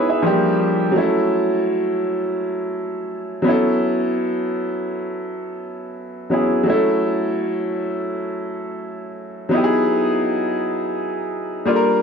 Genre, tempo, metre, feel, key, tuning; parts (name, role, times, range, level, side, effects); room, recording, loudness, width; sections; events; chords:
R&B; 84 BPM; 4/4; swing 58% on 16ths; F# dorian; A4 = 440 Hz
bright grand piano; solo; 0.0-12.0 s; E3 to E5; -18 LUFS; equal; ping-pong delay
moderate plate reverb, RT60 3.2 s; dark, warm production; -18 LUFS; side -6 dB against mid
0.0-12.0 A section
0.2 Gm7; 1.0 F#m7; 3.5 B9sus4; 6.7 F#m7; 9.5 Emaj9